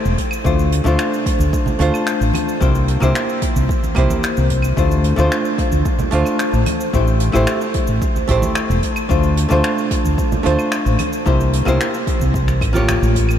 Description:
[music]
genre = sunset chillout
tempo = 111 BPM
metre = 4/4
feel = straight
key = D minor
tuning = A4 = 440 Hz
[part]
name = archtop guitar, miked and amplified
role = accompaniment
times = 0.0-13.4 s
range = A3 to C#5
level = -19 LUFS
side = moving between left 5 dB and right 2 dB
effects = auto-pan, ping-pong delay
[part]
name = mellow fretless electric bass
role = bass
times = 0.1-13.4 s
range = E1 to D2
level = -16 LUFS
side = equal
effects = wide subtle chorus
[part]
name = jazz brush drum kit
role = drums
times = 0.1-13.4 s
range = cabasa, claves, finger snaps, hi-hat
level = -26 LUFS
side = equal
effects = none
[part]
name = electronic kick drum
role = drums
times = 0.2-13.3 s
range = none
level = -21 LUFS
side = equal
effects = overdrive
[part]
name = congas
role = percussion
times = 0.8-13.0 s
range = none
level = -29 LUFS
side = right 3 dB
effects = none
[sound]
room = moderate huge ambient reverb, RT60 7.8 s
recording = dreamy mix soaked in reverb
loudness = -14 LUFS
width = side -10 dB against mid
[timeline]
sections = 0.0-13.4 A section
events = none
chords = 0.5 Dm7; 2.6 C7; 4.8 Dm7; 6.9 Am7; 9.1 Dm7; 11.3 C7; 12.3 A7b9b13

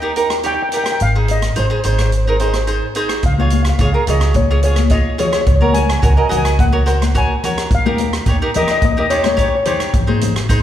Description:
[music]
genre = calypso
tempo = 107 BPM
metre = 4/4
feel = straight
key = Db major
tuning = A4 = 445 Hz
[part]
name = steel pan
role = melody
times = 0.0-10.6 s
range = C5 to Ab5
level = -20 LUFS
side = left 2 dB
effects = none
[part]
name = cavaquinho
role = accompaniment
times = 0.0-10.6 s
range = Eb4 to Eb5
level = -20 LUFS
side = right 2 dB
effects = none
[part]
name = upright bass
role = bass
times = 0.0-10.6 s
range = Ab1 to Eb2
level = -17 LUFS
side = equal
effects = none
[part]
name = vintage drum kit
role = drums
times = 0.2-10.6 s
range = hi-hat, kick drum, rim click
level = -20 LUFS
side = equal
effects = none
[part]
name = congas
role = percussion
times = 3.4-10.4 s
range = none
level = -23 LUFS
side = left 6 dB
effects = none
[sound]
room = wet scoring stage reverb, RT60 1.7 s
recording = recorded in a church or concert hall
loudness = -13 LUFS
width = side -11 dB against mid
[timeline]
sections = 0.0-10.6 A section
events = none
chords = 0.0 Eb; 1.0 Ab; 3.2 Db; 5.5 Gb/Db; 7.7 Eb; 9.9 Ab

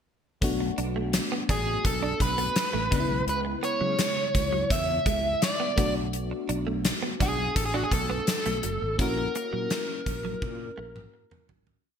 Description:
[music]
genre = 1980s-style pop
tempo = 84 BPM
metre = 4/4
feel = straight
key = B dorian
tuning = A4 = 440 Hz
[part]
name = FM electric piano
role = accompaniment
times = 0.4-11.9 s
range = C#3 to F#4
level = -34 LUFS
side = left 3 dB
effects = chorus
[part]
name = fretless electric bass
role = bass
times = 0.4-11.8 s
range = F#1 to C#3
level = -32 LUFS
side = equal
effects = ensemble chorus
[part]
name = gated 80s drum kit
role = drums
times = 0.4-11.8 s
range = hi-hat, kick drum, snare drum, toms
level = -28 LUFS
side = equal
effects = gated reverb
[part]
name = direct-recorded clean electric guitar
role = riff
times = 0.6-11.6 s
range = F#3 to D4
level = -36 LUFS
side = right 6 dB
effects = lush chorus
[part]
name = biting lead guitar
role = melody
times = 1.5-11.5 s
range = F#4 to E5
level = -29 LUFS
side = right 1 dB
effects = overdrive
[sound]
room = moderate plate reverb, RT60 1.7 s, studio reverb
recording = bright 1980s-style digital production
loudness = -24 LUFS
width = side -7 dB against mid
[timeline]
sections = 0.4-11.8 verse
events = fade-out 9.0-11.8; drum fill 10.4-11.8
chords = 0.4 Bm7; 2.9 C#m7; 5.8 Bm7; 9.0 F#7/A#

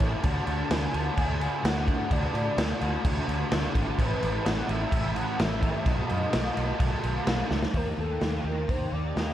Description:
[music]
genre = rock, shoegaze and dream pop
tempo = 128 BPM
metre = 4/4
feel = straight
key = unclear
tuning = A4 = 441 Hz
[part]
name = warm velvety synth lead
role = melody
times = 0.0-9.3 s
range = A4 to A5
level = -34 LUFS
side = equal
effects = chorus, slapback echo
[part]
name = crunchy overdriven guitar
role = riff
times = 0.0-9.3 s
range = A2 to G4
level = -31 LUFS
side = left 1 dB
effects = ensemble chorus
[part]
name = vintage muted fingered electric bass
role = bass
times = 0.0-9.3 s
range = G#1 to A2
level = -31 LUFS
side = equal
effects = none
[part]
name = raw garage drum kit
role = drums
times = 0.0-9.3 s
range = crash cymbal, hi-hat, kick drum, snare drum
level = -28 LUFS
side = equal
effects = none
[sound]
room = small room ambience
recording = none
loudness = -25 LUFS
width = side -12 dB against mid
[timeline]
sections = 0.0-7.7 A section; 7.7-9.3 A section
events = drum fill 7.5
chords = 0.2 D; 4.0 Aadd9; 5.9 B7; 7.7 D#

